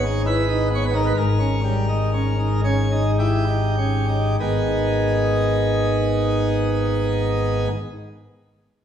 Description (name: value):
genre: classical, chorale-style piece for pipe organ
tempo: 49-70 BPM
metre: 3/4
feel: rubato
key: G# minor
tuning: A4 = 440 Hz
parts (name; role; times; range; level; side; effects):
- pipe organ, plenum; solo; 0.0-7.7 s; G#1 to C#5; -18 LUFS; equal; none
room: wet stone room reverb, RT60 1.4 s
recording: heard from further back in the room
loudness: -18 LUFS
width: side -9 dB against mid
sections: 0.0-4.4 A section; 4.4-8.1 B section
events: slowing down 0.0-4.4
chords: 0.0 G#m; 1.2 D#7/G#; 4.4 G#m